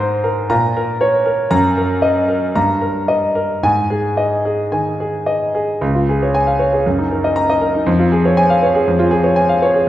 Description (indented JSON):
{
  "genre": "classical, virtuoso piano study",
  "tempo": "108-120 BPM",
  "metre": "4/4",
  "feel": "rubato",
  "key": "Db major",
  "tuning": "A4 = 440 Hz",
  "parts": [
    { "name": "clear concert grand piano", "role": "solo", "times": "0.0-9.9 s", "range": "Db2 to Bb5", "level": "-13 LUFS", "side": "equal", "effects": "none" }
  ],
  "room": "wet recital hall reverb, RT60 1.4 s",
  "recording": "heard from further back in the room",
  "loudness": "-13 LUFS",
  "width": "side -13 dB against mid",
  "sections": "0.0-5.8 A section; 5.8-9.9 B section",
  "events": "none",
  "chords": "0.0 Abadd9; 0.5 Bbm; 1.5 Ebm/Gb; 2.5 Eb/G; 3.6 Ab5; 5.8 Db; 6.9 Ebm/Gb; 7.9 Db/F",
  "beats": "0.01 0.51 1.01 | 1.52 2.03 2.55 3.08 | 3.62 4.18 4.73 5.27 | 5.81 6.34 6.86 7.36 | 7.86 8.37 8.88 9.38 | 9.88"
}